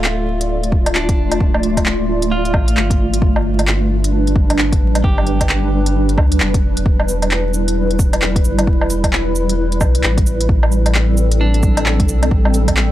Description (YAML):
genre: future garage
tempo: 132 BPM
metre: 4/4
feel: swing 61% on 16ths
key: D dorian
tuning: A4 = 440 Hz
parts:
  - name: clean electric guitar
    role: accompaniment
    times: 0.0-6.5, 11.4-12.9 s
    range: D4 to G4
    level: -27 LUFS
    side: right 2 dB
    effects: vintage 12-bit sampler grit, sidechain pumping, tape echo
  - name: granular cloud pad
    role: sustained chords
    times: 0.0-12.9 s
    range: G3 to D5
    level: -19 LUFS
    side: equal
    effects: built-in reverb, sidechain pumping
  - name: warm sub bass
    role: bass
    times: 0.0-12.9 s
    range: D1 to D2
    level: -18 LUFS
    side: equal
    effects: transformer saturation, sidechain pumping
  - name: organic electronic drum kit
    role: drums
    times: 0.0-12.9 s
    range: cabasa, handclaps, hi-hat, woodblock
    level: -20 LUFS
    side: equal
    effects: overdrive
  - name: electronic kick drum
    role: drums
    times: 0.7-12.7 s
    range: none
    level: -16 LUFS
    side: equal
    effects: overdrive
room: digital ambience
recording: dry, gritty hardware recording, transformer saturation, vinyl crackle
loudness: -13 LUFS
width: side -14 dB against mid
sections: 0.0-12.9 A section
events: none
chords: 0.0 Dm; 3.2 G; 6.9 Em; 10.5 Am7